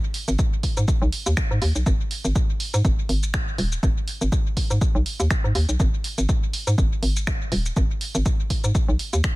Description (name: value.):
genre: minimal techno.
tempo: 122 BPM.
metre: 4/4.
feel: swing 56% on 16ths.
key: G# minor.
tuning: A4 = 440 Hz.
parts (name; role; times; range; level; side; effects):
punchy analog drum machine; drums; 0.1-9.3 s; finger snaps, hi-hat, shaker; -29 LUFS; right 1 dB; dub echo.
hollow knocking FM bass; bass; 0.3-9.2 s; D#1 to G#2; -21 LUFS; equal; sidechain pumping.
electronic kick drum; drums; 0.4-9.3 s; none; -22 LUFS; equal; none.
room: little or no reverb.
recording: echo-heavy mix.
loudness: -20 LUFS.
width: side -20 dB against mid.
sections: 0.0-9.4 A section.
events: none.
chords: none.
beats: 0.39 0.88 1.37 | 1.86 2.35 2.85 3.34 | 3.83 4.32 4.81 5.31 | 5.80 6.29 6.78 7.27 | 7.76 8.26 8.75 9.24.